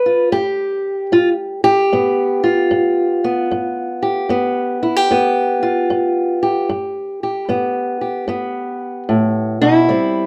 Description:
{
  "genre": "acoustic country blues, solo or duo",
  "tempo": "75 BPM",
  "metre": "4/4",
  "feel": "swing 65% on 8ths",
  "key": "G mixolydian",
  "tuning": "A4 = 440 Hz",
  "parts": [
    { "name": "fingerpicked old ladder-braced acoustic guitar", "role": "solo", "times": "0.0-10.3 s", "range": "G2 to B4", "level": "-17 LUFS", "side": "equal", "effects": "none" }
  ],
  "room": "light reverb",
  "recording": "none",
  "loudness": "-17 LUFS",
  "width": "mono",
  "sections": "0.0-10.3 A section",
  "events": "none",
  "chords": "0.0 G7",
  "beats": "| 0.31 1.11 1.91 2.71 | 3.51 4.31 5.11 5.90 | 6.70 7.50 8.30 9.09 | 9.89"
}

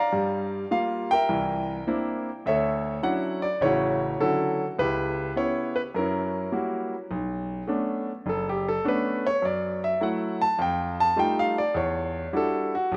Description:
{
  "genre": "solo jazz",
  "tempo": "103 BPM",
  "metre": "4/4",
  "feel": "swing 67% on 8ths",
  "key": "D major, B minor from 7.1 s",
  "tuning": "A4 = 441 Hz",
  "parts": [
    { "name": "clear concert grand piano", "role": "solo", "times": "0.0-13.0 s", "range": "F#1 to Bb5", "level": "-26 LUFS", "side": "equal", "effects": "none" }
  ],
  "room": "moderate lush hall reverb, RT60 3.0 s",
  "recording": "rough home demo mix",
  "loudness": "-26 LUFS",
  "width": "mono",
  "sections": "0.0-7.1 A section; 7.1-13.0 B section",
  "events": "grand piano solo 7.1-13.0",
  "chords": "0.1 Gm7; 1.3 C9; 2.5 Dmaj9; 4.8 C#m7b5; 5.9 F#7b9; 7.1 Bm9; 9.4 F#m7; 10.6 F9; 11.7 Em9",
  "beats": "| 0.12 0.71 1.29 1.87 | 2.45 3.04 3.62 4.20 | 4.78 5.36 5.94 6.52 | 7.10 7.68 8.27 8.85 | 9.43 10.01 10.59 11.17 | 11.75 12.33 12.91"
}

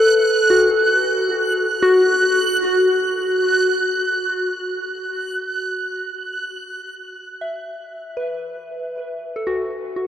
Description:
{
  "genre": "ambient",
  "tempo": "free time",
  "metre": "none",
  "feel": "none",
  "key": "unclear",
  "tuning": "A4 = 441 Hz",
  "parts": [
    { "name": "soft synth bell", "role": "arpeggios", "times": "0.0-10.1 s", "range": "F#4 to E5", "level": "-19 LUFS", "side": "left 1 dB", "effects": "chorus, phaser, diffuse ambient delay" },
    { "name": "backwards swelling texture", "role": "texture", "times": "0.0-5.3 s", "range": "F#6", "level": "-21 LUFS", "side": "right 2 dB", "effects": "built-in reverb" }
  ],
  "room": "wet huge ambient reverb, RT60 7.0 s",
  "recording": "worn, warbling old tape, cassette tape, warbly pitch drift",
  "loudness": "-17 LUFS",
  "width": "side -10 dB against mid",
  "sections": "0.0-5.3 A section; 5.3-10.1 B section",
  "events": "fade-in on synth bell 5.3-10.1",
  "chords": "0.5 N.C.; 5.3 F#m7",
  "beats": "free time"
}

